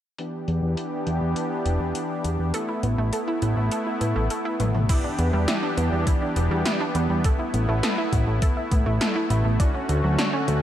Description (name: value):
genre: synthwave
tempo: 102 BPM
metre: 4/4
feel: straight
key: unclear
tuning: A4 = 440 Hz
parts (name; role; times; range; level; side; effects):
- soft supersaw; sustained chords; 0.2-10.6 s; D3 to G4; -27 LUFS; equal; sidechain pumping, low-pass filter
- 80s electronic pad drums; drums; 0.2-10.6 s; crash cymbal, hi-hat, snare drum, toms; -29 LUFS; left 1 dB; gated reverb on snare and toms, overdrive, low-pass filter on hats, low-pass filter on toms, low-pass filter on cymbals, low-pass filter on snare
- fat analog bass; bass; 0.5-10.6 s; E1 to A2; -23 LUFS; equal; none
- analog pluck; arpeggios; 2.5-10.6 s; F#3 to A4; -29 LUFS; right 2 dB; chorus, cassette tape, tape echo
- electronic kick drum; drums; 4.9-9.7 s; none; -22 LUFS; equal; overdrive
room: light reverb, digital ambience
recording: none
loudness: -21 LUFS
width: side -11 dB against mid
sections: 0.2-4.9 A section; 4.9-10.6 B section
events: filter sweep on drum 0.2-4.9; filter sweep on supersaw synth 0.2-4.9; drum fill 4.6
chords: 0.2 Em7; 2.5 Asus2; 4.9 Em7; 7.2 Asus2; 9.6 Dmaj7